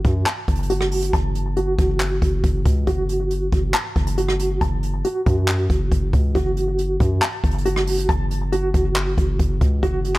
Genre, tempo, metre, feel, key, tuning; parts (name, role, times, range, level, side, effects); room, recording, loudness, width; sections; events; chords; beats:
hip hop, trap; 138 BPM; 4/4; half-time; F# minor; A4 = 445 Hz
mellow electric guitar; arpeggios; 0.0-10.2 s; F#4 to A5; -24 LUFS; equal; tremolo, low-pass filter, digital delay
distorted 808-style bass; bass; 0.0-10.2 s; F#1 to F#2; -22 LUFS; equal; distortion
jazz brush drum kit; drums; 0.0-10.2 s; handclaps, hi-hat, kick drum, rim click; -22 LUFS; equal
small room reverb; dark, warm production; -18 LUFS; side -18 dB against mid
0.0-10.2 A section
filter sweep on clean electric guitar 0.0-8.1
0.0 F#m
0.26 0.70 | 1.13 1.57 2.00 2.44 | 2.87 3.31 3.74 4.18 | 4.61 5.05 5.48 5.92 | 6.35 6.79 7.22 7.66 | 8.09 8.53 8.96 9.39 | 9.83